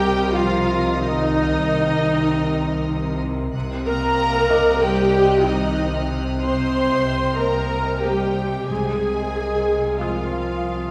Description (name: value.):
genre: cinematic.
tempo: 93 BPM.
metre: 4/4.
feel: straight.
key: C minor.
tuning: A4 = 440 Hz.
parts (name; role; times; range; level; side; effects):
rich symphonic violin section; melody; 0.0-10.9 s; Eb5 to C6; -36 LUFS; equal; none.
dark clarinet; second line; 0.0-10.9 s; Eb4 to C5; -28 LUFS; equal; none.
rich studio violin section; second line; 0.0-10.9 s; Eb5 to C6; -32 LUFS; equal; none.
clear symphonic viola section; accompaniment; 0.0-10.9 s; Eb4 to C5; -26 LUFS; equal; none.
mellow French horn section; sustained chords; 0.0-10.9 s; Eb3 to C4; -28 LUFS; equal; none.
warbly tape-like pad; sustained chords; 0.0-10.9 s; Bb4 to Bb5; -34 LUFS; equal; chorus, built-in reverb, phaser.
rich symphonic cello section; bass; 0.0-10.9 s; C3; -32 LUFS; equal; none.
rich symphonic double bass section; bass; 0.0-10.9 s; C2; -29 LUFS; equal; none.
felt-muted upright piano; texture; 0.0-10.9 s; Eb5 to Eb6; -37 LUFS; equal; none.
warm symphonic violin section; texture; 0.0-8.3 s; Eb6 to Bb6; -39 LUFS; equal; none.
timpani; percussion; 8.7-9.6 s; C3; -37 LUFS; equal; none.
room: wet scoring stage reverb, RT60 1.7 s.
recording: heard from further back in the room.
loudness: -20 LUFS.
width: mono.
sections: 0.0-10.9 A section.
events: none.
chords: 0.0 Eb69/C; 3.5 Cm7; 8.7 Absus2/C.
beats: 0.35 | 0.99 1.63 2.27 2.90 | 3.54 4.18 4.82 5.47 | 6.11 6.76 7.40 8.05 | 8.70 9.35 10.00 10.66.